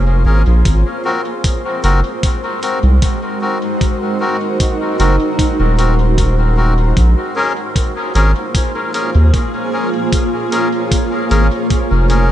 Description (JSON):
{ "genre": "ambient dub", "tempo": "76 BPM", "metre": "4/4", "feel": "straight", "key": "Bb minor", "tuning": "A4 = 440 Hz", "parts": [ { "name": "granular cloud pad", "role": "sustained chords", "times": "0.0-12.3 s", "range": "Ab3 to Db5", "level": "-19 LUFS", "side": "right 1 dB", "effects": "built-in reverb" }, { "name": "round analog bass", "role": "bass", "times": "0.0-12.3 s", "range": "Eb1 to Eb2", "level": "-11 LUFS", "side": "equal", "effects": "none" }, { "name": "melodica", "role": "stabs", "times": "0.3-12.3 s", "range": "C4 to Bb4", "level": "-20 LUFS", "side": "left 2 dB", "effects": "vintage 12-bit sampler grit, dub echo" }, { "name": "electronic hi-hat", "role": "drums", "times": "0.7-12.3 s", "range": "none", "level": "-28 LUFS", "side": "equal", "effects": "small room ambience, dub echo" }, { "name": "electronic kick drum", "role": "drums", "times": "0.7-11.9 s", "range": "none", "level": "-16 LUFS", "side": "equal", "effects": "small room ambience" } ], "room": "light reverb", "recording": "nothing above 10.4 kHz", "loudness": "-12 LUFS", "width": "side -12 dB against mid", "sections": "0.0-12.3 A section", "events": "none", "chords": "0.0 Bbm7; 0.7 Ab9; 7.0 Bbm7" }